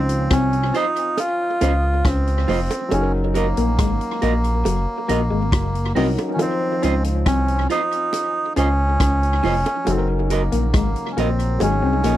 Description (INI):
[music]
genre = lovers rock reggae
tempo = 69 BPM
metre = 4/4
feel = straight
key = Db major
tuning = A4 = 440 Hz
[part]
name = melodica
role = melody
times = 0.0-12.2 s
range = Bb3 to F4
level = -23 LUFS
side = right 1 dB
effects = tape echo
[part]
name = warm concert grand piano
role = accompaniment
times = 0.0-12.2 s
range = Db3 to C5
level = -28 LUFS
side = left 2 dB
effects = tape echo
[part]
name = electric guitar through a small old amp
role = riff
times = 0.0-12.2 s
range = F3 to Db4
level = -26 LUFS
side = left 4 dB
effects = tape echo
[part]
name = smooth synth bass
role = bass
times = 0.0-12.2 s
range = F1 to Db2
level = -21 LUFS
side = equal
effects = none
[part]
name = vintage drum kit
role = drums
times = 0.1-12.2 s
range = hi-hat, kick drum, rim click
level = -24 LUFS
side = equal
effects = tape echo
[part]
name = electric guitar through a small old amp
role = stabs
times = 0.7-12.1 s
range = F4 to Eb5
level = -23 LUFS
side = right 5 dB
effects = none
[part]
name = bongos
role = percussion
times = 1.2-12.2 s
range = none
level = -29 LUFS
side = right 4 dB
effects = tape echo
[sound]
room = light reverb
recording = dry, close 1970s-style studio recording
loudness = -17 LUFS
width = side -13 dB against mid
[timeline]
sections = 0.0-12.2 A section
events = none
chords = 0.0 Dbmaj9; 2.9 Gb6; 6.4 Dbmaj9; 9.9 Gb6; 11.6 Ab7sus4